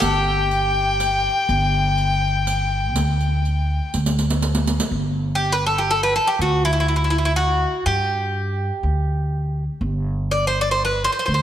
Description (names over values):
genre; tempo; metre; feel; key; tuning
Turkish makam ensemble; 122 BPM (eighths); 10/8; straight; unclear; A4 = 440 Hz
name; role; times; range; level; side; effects
Greek bouzouki; melody; 0.0-11.4 s; E4 to D5; -20 LUFS; equal; none
rich violin; second line; 0.0-3.9 s; G5; -22 LUFS; left 5 dB; none
upright bass; bass; 0.0-11.4 s; G1 to G2; -22 LUFS; equal; none
riq; percussion; 0.0-4.9 s; none; -26 LUFS; right 2 dB; none
room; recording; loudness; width
moderate concert hall reverb, RT60 1.9 s; none; -18 LUFS; side -10 dB against mid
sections
0.0-4.9 A section; 4.9-11.4 B section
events
drum fill 3.9-4.9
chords
none